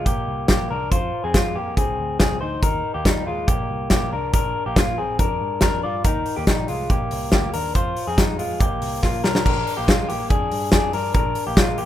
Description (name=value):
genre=jangly indie pop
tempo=140 BPM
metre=4/4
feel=straight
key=unclear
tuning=A4 = 440 Hz
part: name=electric guitar through a small old amp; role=arpeggios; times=0.0-11.9 s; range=G3 to D5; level=-24 LUFS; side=left 2 dB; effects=digital delay
part: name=vintage muted picked electric bass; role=bass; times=0.0-11.9 s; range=Bb1 to G2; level=-30 LUFS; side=equal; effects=none
part: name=big rock drum kit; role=drums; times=0.1-11.9 s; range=crash cymbal, hi-hat, kick drum, snare drum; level=-20 LUFS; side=equal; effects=none
room=little or no reverb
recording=rough home demo mix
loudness=-19 LUFS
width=side -12 dB against mid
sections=0.0-9.5 A section; 9.5-11.9 B section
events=drum fill 9.0-9.5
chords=0.0 Eb (rootless); 0.9 Fm; 2.6 Eb; 4.3 Bb; 6.0 Eb; 7.8 Fm; 8.6 Bb; 9.5 Bb7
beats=0.06 0.49 | 0.92 1.34 1.77 2.20 | 2.63 3.06 3.48 3.91 | 4.34 4.76 5.19 5.62 | 6.05 6.47 6.90 7.33 | 7.75 8.18 8.60 9.03 | 9.45 9.88 10.30 10.73 | 11.15 11.57